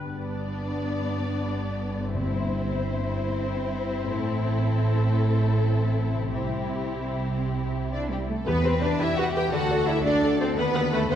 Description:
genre	cinematic, heroic adventure film score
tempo	114 BPM (dotted quarters)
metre	12/8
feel	straight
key	unclear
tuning	A4 = 439 Hz
part	warm symphonic violin section	melody	0.0-11.2 s	G4 to G5	-33 LUFS	left 3 dB	none
part	rich studio violin section	second line	0.0-11.2 s	D4 to C5	-32 LUFS	left 4 dB	none
part	rich symphonic viola section	accompaniment	0.0-11.2 s	B3 to F#5	-32 LUFS	equal	none
part	concert harp	arpeggios	0.0-11.2 s	G2 to B5	-34 LUFS	left 4 dB	none
part	rich symphonic cello section	bass	0.0-11.2 s	G2 to G4	-30 LUFS	right 2 dB	none
part	rich symphonic double bass section	bass	0.0-11.2 s	G1 to E2	-28 LUFS	right 2 dB	none
part	timpani	percussion	2.1-2.6 s	G2	-34 LUFS	equal	none
room	wet concert hall reverb, RT60 2.4 s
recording	heard from further back in the room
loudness	-23 LUFS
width	side -10 dB against mid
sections	0.0-8.5 A section; 8.5-11.2 B section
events	none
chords	0.0 G; 2.1 C/G; 4.2 Am; 6.3 C; 8.5 Em; 9.5 D; 10.6 B/D#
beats	| 0.03 0.56 1.09 1.62 | 2.14 2.66 3.18 3.70 | 4.22 4.74 5.26 5.79 | 6.32 6.86 7.39 7.93 | 8.47 8.99 9.52 10.05 | 10.57 11.10

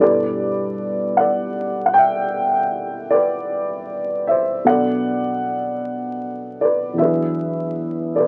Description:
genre	jazz ballad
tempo	52 BPM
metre	4/4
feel	swing 66% on 8ths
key	G major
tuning	A4 = 441 Hz
part	dark upright piano	solo	0.0-8.3 s	E2 to G5	-20 LUFS	equal	none
room	moderate studio ambience, RT60 0.5 s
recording	very old 78 rpm record, vinyl crackle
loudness	-20 LUFS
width	mono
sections	0.0-8.3 A section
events	none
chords	0.0 G69; 4.7 Bm7; 7.0 E7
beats	1.16 2.33 3.50 | 4.66 5.82 6.99 8.15

